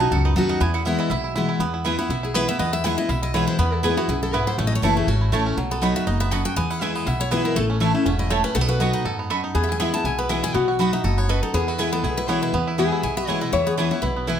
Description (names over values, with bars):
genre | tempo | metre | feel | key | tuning
bluegrass | 242 BPM | 4/4 | swing 55% on 8ths | E major | A4 = 441 Hz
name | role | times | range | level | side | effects
bluegrass banjo | melody | 0.0-14.4 s | E3 to A4 | -28 LUFS | right 4 dB | none
lap resonator guitar | second line | 0.0-1.4, 9.5-14.4 s | E4 to C#5 | -28 LUFS | left 6 dB | none
picked steel-string acoustic guitar | accompaniment | 0.0-14.4 s | E2 to F#4 | -24 LUFS | left 2 dB | none
mandolin | stabs | 0.0-14.4 s | A3 to B5 | -28 LUFS | right 7 dB | none
upright bass | bass | 0.0-14.4 s | E1 to F#2 | -25 LUFS | equal | none
picked steel-string acoustic guitar | melody | 2.0-14.4 s | F#4 to B5 | -27 LUFS | left 3 dB | none
room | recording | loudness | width
light reverb | none | -19 LUFS | side -9 dB against mid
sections
0.0-1.6 A section; 1.6-14.4 B section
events
mandolin solo 0.0-1.6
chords
0.0 B; 0.6 E; 4.6 A; 5.6 B; 6.6 E; 7.6 A; 8.6 B; 9.6 E; 10.5 B; 11.5 E